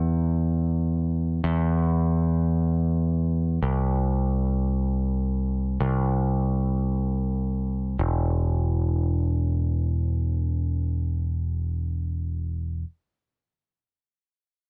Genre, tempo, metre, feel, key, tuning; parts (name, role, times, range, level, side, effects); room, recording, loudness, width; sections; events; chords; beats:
rock; free time; A4 = 440 Hz
growling picked electric bass; bass; 0.0-12.8 s; E1 to E2; -25 LUFS; equal; overdrive
little or no reverb; -25 LUFS; mono
0.0-8.0 A section; 8.0-12.4 B section
free time